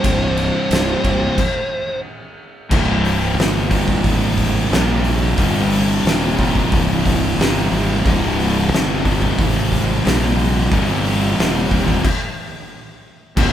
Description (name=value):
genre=stoner and doom metal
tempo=90 BPM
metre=4/4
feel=straight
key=C minor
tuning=A4 = 445 Hz
part: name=fuzz lead guitar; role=melody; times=0.0-2.0 s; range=C5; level=-22 LUFS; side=right 1 dB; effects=distortion
part: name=thick fuzz guitar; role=riff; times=0.0-13.5 s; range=C2 to C3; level=-22 LUFS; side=left 6 dB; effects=distortion
part: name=thick fuzz guitar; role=riff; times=0.0-13.5 s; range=C2 to C3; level=-23 LUFS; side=right 6 dB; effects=distortion
part: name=fuzz fingered electric bass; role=bass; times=0.0-13.5 s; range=C1 to Bb1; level=-20 LUFS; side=equal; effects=overdrive, tube saturation
part: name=oversized low-tuned drum kit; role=drums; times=0.0-13.5 s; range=crash cymbal, hi-hat, kick drum, ride cymbal, snare drum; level=-20 LUFS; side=equal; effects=none
part: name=raw garage guitar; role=riff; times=2.7-13.5 s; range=C2 to Eb4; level=-25 LUFS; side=left 1 dB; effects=overdrive
room=light reverb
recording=band playing live in one room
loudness=-15 LUFS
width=side -10 dB against mid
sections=0.0-2.7 A section; 2.7-13.4 B section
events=stop 1.4-2.7, 12.0-13.4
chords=0.0 C5; 2.7 Cm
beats=| 0.04 0.71 1.38 2.05 | 2.72 3.38 4.05 4.72 | 5.39 6.05 6.72 7.39 | 8.05 8.72 9.38 10.05 | 10.71 11.38 12.04 12.71 | 13.37